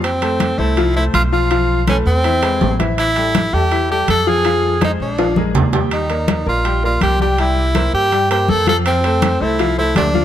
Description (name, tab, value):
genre	latin, salsa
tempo	163 BPM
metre	4/4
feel	straight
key	unclear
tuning	A4 = 439 Hz
part	clear tenor saxophone	melody	0.0-10.2 s	C4 to A4	-17 LUFS	right 1 dB	none
part	upright bass	bass	0.0-10.2 s	A1 to G2	-20 LUFS	right 1 dB	none
part	congas	percussion	0.0-10.2 s	none	-21 LUFS	left 2 dB	none
part	timbales	percussion	0.0-10.1 s	none	-25 LUFS	right 6 dB	none
part	bright upright piano	accompaniment	0.2-10.2 s	E3 to G5	-20 LUFS	left 4 dB	none
room	light reverb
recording	none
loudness	-13 LUFS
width	side -11 dB against mid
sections	0.0-10.2 A section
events	drum fill 5.2-5.9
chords	0.0 Fmaj7; 1.5 Fmaj7#11/B; 2.2 E; 3.0 A5; 4.4 Fm; 5.2 Bb5; 5.9 Ebmaj7; 7.4 C7; 8.9 Fmaj7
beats	| 0.03 0.40 0.77 1.14 | 1.51 1.87 2.24 2.61 | 2.98 3.35 3.71 4.08 | 4.45 4.82 5.18 5.55 | 5.92 6.28 6.65 7.02 | 7.39 7.75 8.12 8.49 | 8.86 9.22 9.59 9.96